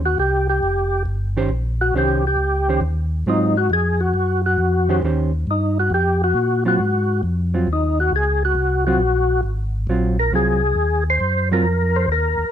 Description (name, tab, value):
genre	jazz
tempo	136 BPM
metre	4/4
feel	swing 68% on 8ths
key	unclear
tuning	A4 = 440 Hz
part	mellow tonewheel organ	bass	0.0-12.4 s	F1 to Bb2	-20 LUFS	equal	overdrive, chorus vibrato, slow rotary speaker
part	percussive tonewheel organ	melody	0.1-12.5 s	Eb4 to C5	-19 LUFS	left 1 dB	overdrive, chorus vibrato, slow rotary speaker
part	hollow-body jazz guitar	accompaniment	1.4-11.6 s	Eb3 to C5	-22 LUFS	right 3 dB	none
room	light reverb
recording	dark, warm production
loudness	-17 LUFS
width	side -10 dB against mid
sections	0.0-12.5 A section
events	tonewheel organ solo 0.0-12.5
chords	0.0 Eb13; 3.3 Ab6; 5.0 Eb13; 6.8 Ab13